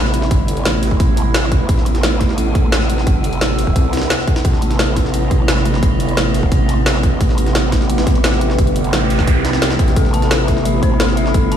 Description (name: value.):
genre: dark technical drum and bass.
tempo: 174 BPM.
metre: 4/4.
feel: straight.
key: A minor.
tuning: A4 = 440 Hz.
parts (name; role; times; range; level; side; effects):
metallic inharmonic drone; sustained chords; 0.0-11.6 s; C3 to A4; -20 LUFS; right 1 dB; chorus, built-in reverb, phaser, sidechain pumping.
growl bass; bass; 0.0-11.6 s; G1 to C2; -17 LUFS; equal; chorus, overdrive, sidechain pumping.
drum and bass drum kit; drums; 0.1-11.6 s; hi-hat, snare drum; -21 LUFS; equal; overdrive.
jungle sampler-style drum kit; drums; 0.1-11.6 s; hi-hat, snare drum; -26 LUFS; equal; high-pass filter on hats, high-pass filter on snare.
electronic kick drum; drums; 0.3-11.4 s; none; -15 LUFS; equal; none.
noise sweep; sound effects; 8.7-10.0 s; none; -26 LUFS; right 4 dB; none.
dark detuned synth bell; arpeggios; 10.0-11.6 s; A4 to A5; -22 LUFS; left 6 dB; chorus, sidechain pumping, ping-pong delay.
room: light reverb.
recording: played on a big sound system in a bare room, stone room reverb.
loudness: -13 LUFS.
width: side -9 dB against mid.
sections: 0.0-11.6 A section.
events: noise sweep 8.7-10.0.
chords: 0.0 Amadd9.